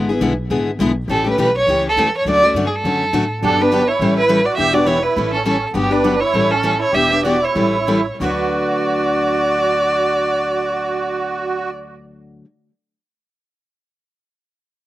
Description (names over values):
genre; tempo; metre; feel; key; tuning
acoustic string swing (jazz manouche); 176-207 BPM; 4/4; swing 57% on 8ths; D major; A4 = 440 Hz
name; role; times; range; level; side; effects
picked steel-string acoustic guitar; accompaniment; 0.0-12.5 s; C#3 to B4; -20 LUFS; left 2 dB; none
upright bass; bass; 0.0-12.4 s; E1 to A2; -27 LUFS; equal; none
warm violin; melody; 1.1-11.7 s; G4 to E5; -17 LUFS; right 1 dB; none
musette accordion; second line; 3.4-11.7 s; B3 to G4; -22 LUFS; right 6 dB; slapback echo
room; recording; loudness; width
little or no reverb; recorded outdoors, with no room sound; -15 LUFS; side -14 dB against mid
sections
0.0-3.4 A section; 3.4-8.2 B section; 8.2-10.9 C section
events
slowing down 5.7-8.2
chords
0.0 E7/G#; 1.1 A7; 2.3 Dmaj7; 3.4 Gmaj7; 4.0 A9; 4.6 Em7; 5.2 A7; 5.7 Gmaj7; 6.3 A7; 6.9 Em7; 7.6 A7; 8.2 D6